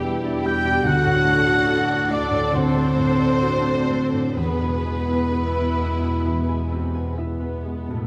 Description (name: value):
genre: cinematic, emotional film score for orchestra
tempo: 63-73 BPM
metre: 4/4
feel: rubato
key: unclear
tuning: A4 = 440 Hz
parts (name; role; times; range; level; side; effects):
- warm chamber violin section; melody; 0.0-7.2 s; G4 to G5; -32 LUFS; equal; none
- dark studio violin section; second line; 0.0-7.1 s; G4 to G5; -33 LUFS; equal; none
- mellow concert flute; second line; 0.0-7.1 s; G5 to G6; -28 LUFS; equal; none
- felt-muted upright piano; accompaniment; 0.0-8.1 s; D2 to B4; -27 LUFS; equal; none
- warm studio viola section; accompaniment; 0.0-8.1 s; C3 to A4; -33 LUFS; equal; none
- concert harp; arpeggios; 0.0-8.1 s; A2 to A5; -34 LUFS; equal; none
- rich studio double bass section; bass; 0.0-7.8 s; D2 to E2; -30 LUFS; equal; none
- warm studio cello section; bass; 0.0-7.2 s; G3 to G4; -28 LUFS; equal; none
room: wet recital hall reverb, RT60 1.4 s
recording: none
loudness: -21 LUFS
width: mono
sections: 0.0-8.1 A section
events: none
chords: 0.0 Em7; 0.9 D; 4.4 E